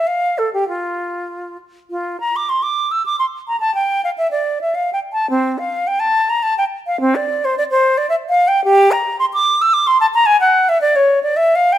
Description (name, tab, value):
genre	classical, baroque-style fantasia for unaccompanied flute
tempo	93-112 BPM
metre	3/4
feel	rubato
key	F major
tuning	A4 = 442 Hz
part	concert flute	solo	0.0-11.8 s	C4 to E6	-14 LUFS	equal	none
room	moderate stone room reverb, RT60 1.3 s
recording	none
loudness	-14 LUFS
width	side -12 dB against mid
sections	0.0-1.9 A section; 1.9-11.8 B section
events	none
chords	none